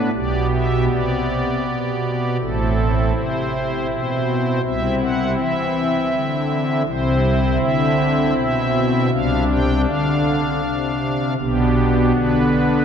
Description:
classical, chorale-style piece for pipe organ; 80 BPM; 3/4; rubato; C major from 6.9 s; A4 = 438 Hz
pipe organ, strings celeste; solo; 0.0-12.8 s; A1 to G5; -17 LUFS; equal
wet cathedral reverb, RT60 4.4 s; dark, warm production; -17 LUFS; side -7 dB against mid
0.0-12.8 A section
0.1 G/B; 2.4 Am; 4.6 Cadd9; 6.9 C; 9.1 Dm7/C; 11.4 G/B

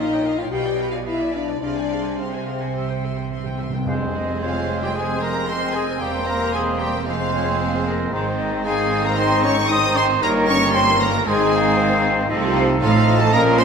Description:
quick classical-period movement for symphony orchestra; 105-117 BPM; 4/4; rubato; F minor; A4 = 440 Hz
rich studio violin section; melody; 0.0-13.6 s; F5 to Eb6; -26 LUFS; left 2 dB
rich studio violin section; second line; 0.0-13.6 s; G3 to G5; -30 LUFS; left 4 dB
rich chamber viola section; accompaniment; 0.0-13.6 s; Eb3 to Ab5; -28 LUFS; right 1 dB
mellow French horn section; sustained chords; 0.0-13.6 s; F3 to G4; -25 LUFS; left 4 dB
clear chamber cello section; bass; 0.0-13.6 s; E2 to C3; -27 LUFS; right 4 dB
clear chamber double bass section; bass; 0.0-13.6 s; E1 to C2; -27 LUFS; right 4 dB
timpani; percussion; 2.8-4.6 s; F2 to C3; -30 LUFS; equal
mellow clarinet; second line; 3.9-13.6 s; C4 to Eb4; -29 LUFS; left 2 dB
silver concert flute; second line; 3.9-13.6 s; Bb4 to F5; -27 LUFS; left 3 dB
warm cor anglais; second line; 3.9-13.6 s; A4 to Db5; -29 LUFS; right 3 dB
clear bassoon; accompaniment; 3.9-13.6 s; Eb3 to Bb3; -28 LUFS; right 2 dB
mellow trumpet; stabs; 4.4-13.6 s; F4 to Eb5; -24 LUFS; right 3 dB
moderate scoring stage reverb, RT60 1.7 s; minimal, uncompressed stereo recording; -18 LUFS; side -6 dB against mid
0.0-3.9 A section; 3.9-13.6 B section
timpani fill 2.7-3.9
0.0 Gm7b5/Bb; 0.5 Bdim7; 1.6 Fm/C; 2.7 C; 3.9 Fm; 6.0 C7/E; 7.1 Fm; 8.1 Ab; 10.2 Eb7/G; 11.3 Ab; 12.3 F7/C

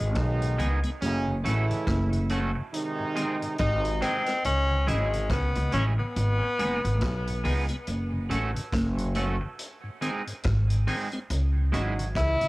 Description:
roots reggae; 70 BPM; 4/4; swing 59% on 16ths; A4 = 436 Hz
bright tenor saxophone; melody; 0.0-12.5 s; G#3 to E4; -29 LUFS; left 2 dB; cassette tape, tape echo
tonewheel organ; accompaniment; 0.0-12.5 s; F#2 to C#4; -34 LUFS; left 1 dB; slow rotary speaker
upright bass; bass; 0.0-12.5 s; F#1 to C#2; -26 LUFS; equal
mellow horn section; second line; 0.2-4.2, 11.7-12.4 s; A2 to F#4; -32 LUFS; right 2 dB; tape echo
vintage drum kit; drums; 0.2-12.5 s; hi-hat, kick drum, rim click; -35 LUFS; equal; cassette tape
electric guitar at the edge of break-up; accompaniment; 0.6-11.9 s; G#3 to A4; -34 LUFS; right 2 dB; spring reverb, tape echo
light reverb; home recording on cassette; -24 LUFS; side -21 dB against mid
0.0-12.5 A section
0.0 G#m; 1.0 F#m; 2.7 G#; 4.4 C#m; 6.2 G#m; 7.9 F#m; 9.6 G#; 11.3 C#m

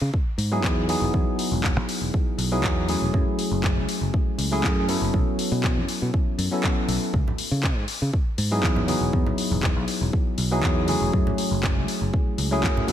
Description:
nu-disco, nu disco; 120 BPM; 4/4; swing 54% on 16ths; A4 = 440 Hz
picked electric bass; bass; 0.0-12.9 s; E1 to C#3; -26 LUFS; equal
electronic kick drum; drums; 0.1-12.7 s; -24 LUFS; equal
house drum kit; drums; 0.4-12.9 s; handclaps, hi-hat; -30 LUFS; left 2 dB; overdrive
bell-like tine electric piano; accompaniment; 0.5-12.9 s; F#3 to A4; -25 LUFS; equal; wide subtle chorus, tape echo
congas; percussion; 7.3-12.9 s; -32 LUFS; right 2 dB
light reverb; -21 LUFS; side -10 dB against mid
0.0-12.9 A section
0.0 C#m11 (rootless); 0.9 Emaj9; 3.1 F#m7; 5.1 B9sus4; 7.1 C#m11; 8.9 Emaj9; 11.1 F#m7

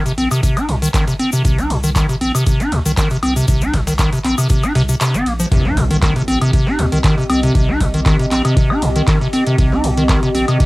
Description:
acid house; 118 BPM; 4/4; swing 53% on 16ths; C minor; A4 = 437 Hz
acid bass, square; riff; 0.0-10.7 s; Bb2 to Eb4; -16 LUFS; equal; lush chorus, sidechain pumping, cassette tape, tape echo
booming analog drum machine; drums; 0.1-10.7 s; handclaps, hi-hat, woodblock; -24 LUFS; equal
breakbeat sampler-style drum kit; drums; 0.1-10.7 s; hi-hat, ride cymbal, snare drum; -35 LUFS; right 1 dB
egg shaker; percussion; 0.1-5.5 s; -28 LUFS; left 7 dB
saturated sub bass; bass; 0.2-10.4 s; G1 to Eb2; -22 LUFS; equal; sidechain pumping
electronic kick drum; drums; 0.4-10.7 s; -17 LUFS; equal
impact; sound effects; 5.5-7.5 s; -24 LUFS; equal
warbly tape-like pad; texture; 6.3-10.7 s; C4 to Eb5; -22 LUFS; equal; chorus, built-in reverb, sidechain pumping, cassette tape
light reverb; home recording on cassette; -13 LUFS; side -21 dB against mid
0.0-5.5 A section; 5.5-10.7 B section
kick drops out 5.0-5.5; drop 5.5-10.7; impact 5.5-7.5
0.0 Cm

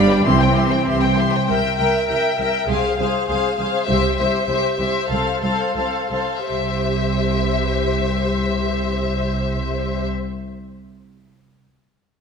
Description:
quick classical-period movement for string orchestra; 84-101 BPM; 2/4; straight; C major; A4 = 443 Hz
warm symphonic violin section; melody; 0.0-10.1 s; E5 to C6; -24 LUFS; left 7 dB
dark symphonic violin section; second line; 0.0-10.1 s; G4 to G5; -24 LUFS; left 3 dB
warm symphonic viola section; accompaniment; 0.0-10.1 s; E3 to Bb4; -24 LUFS; right 1 dB
dark symphonic cello section; bass; 0.0-10.1 s; C2 to D4; -25 LUFS; right 1 dB
warm symphonic double bass section; bass; 0.0-10.1 s; G1 to C2; -23 LUFS; right 3 dB
wet scoring stage reverb, RT60 1.6 s; -17 LUFS; side -6 dB against mid
0.0-1.5 A section; 1.5-6.5 B section; 6.5-9.3 C section
slowing down 3.3-6.5
0.2 C; 1.5 C7; 2.7 Fm/C; 3.9 C; 5.1 F/C; 6.5 C

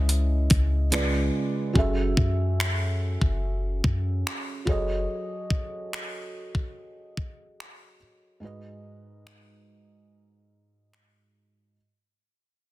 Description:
contemporary R&B; 72 BPM; 4/4; straight; A4 = 440 Hz
felt-muted upright piano; accompaniment; 0.0-11.8 s; G#2 to E5; -31 LUFS; right 2 dB
clean 808-style bass; bass; 0.0-5.1 s; F#1 to F#2; -25 LUFS; equal
clean 12-bit digital drum machine; drums; 0.1-11.1 s; finger snaps, hi-hat, kick drum; -26 LUFS; equal; overdrive, soft clipping on snare
little or no reverb; dense, heavily limited modern master; -24 LUFS; side -17 dB against mid
0.0-11.8 A section
fade-out 0.0-11.8; break 8.4-11.8
0.0 C#m9; 0.9 C#7b9; 1.8 F#m7; 4.7 F#m69; 8.4 G#m7

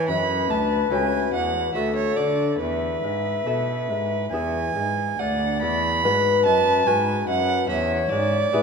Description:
classical, baroque-style sonata movement with continuo; 72 BPM; 3/4; straight; A4 = 436 Hz
rich violin; second line; 0.0-8.6 s; B4 to B5; -24 LUFS; right 5 dB
lute; accompaniment; 0.0-8.6 s; D2 to B4; -27 LUFS; left 2 dB
rich cello; bass; 0.0-8.6 s; C#2 to D3; -27 LUFS; right 1 dB
wooden flute; melody; 0.1-8.6 s; A4 to E5; -26 LUFS; left 7 dB
wet concert hall reverb, RT60 2.4 s; -20 LUFS; side -5 dB against mid
0.0-5.2 A section; 5.2-8.6 B section
0.1 F#m; 1.7 D; 2.6 Esus4; 4.3 E; 5.2 Bm/D; 7.7 E

